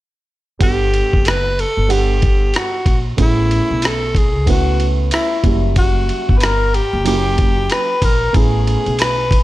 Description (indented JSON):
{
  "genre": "hip hop, jazz-hop",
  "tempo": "93 BPM",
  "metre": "4/4",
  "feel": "swing 60% on 16ths",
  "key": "unclear",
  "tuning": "A4 = 442 Hz",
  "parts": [
    { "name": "breathy alto saxophone", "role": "melody", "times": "0.6-9.4 s", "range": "E4 to B4", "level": "-20 LUFS", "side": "equal", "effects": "none" },
    { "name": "dark concert grand piano", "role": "accompaniment", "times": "0.6-9.2 s", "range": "F#3 to F#5", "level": "-23 LUFS", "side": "right 7 dB", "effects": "none" },
    { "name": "upright bass", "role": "bass", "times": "0.6-9.4 s", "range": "F#1 to C#2", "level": "-18 LUFS", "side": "equal", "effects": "none" },
    { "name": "dusty soul sampler-style drum kit", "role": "drums", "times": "0.6-9.4 s", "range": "hi-hat, kick drum, ride cymbal, rim click", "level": "-17 LUFS", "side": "equal", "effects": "none" },
    { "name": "vibraphone with soft mallets", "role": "second line", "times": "4.5-9.4 s", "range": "E5 to B5", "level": "-23 LUFS", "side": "left 5 dB", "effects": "analog delay" }
  ],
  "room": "small room ambience",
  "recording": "none",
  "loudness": "-13 LUFS",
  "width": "side -16 dB against mid",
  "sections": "0.6-9.4 A section",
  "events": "none",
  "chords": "0.6 Gmaj7; 3.2 Amaj9; 5.4 F#7b9; 8.3 Amaj9",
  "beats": "| 0.61 1.25 1.90 2.54 | 3.19 3.83 4.48 5.12 | 5.77 6.41 7.06 7.70 | 8.35 8.99"
}